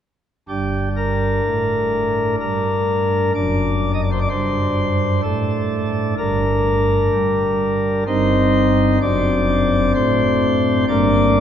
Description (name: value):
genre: classical, chorale-style piece for pipe organ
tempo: 63 BPM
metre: 3/4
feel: rubato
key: G minor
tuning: A4 = 435 Hz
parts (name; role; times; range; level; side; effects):
- pipe organ, sparkling flutes; solo; 0.5-11.4 s; F#1 to Eb5; -16 LUFS; equal; none
room: wet cathedral reverb, RT60 5.8 s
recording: none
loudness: -16 LUFS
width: side -9 dB against mid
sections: 0.5-11.4 A section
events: none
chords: 0.5 Gm; 3.3 D7/F#; 6.2 Gm; 8.1 Cm/G; 9.0 D7/F#; 10.9 Gm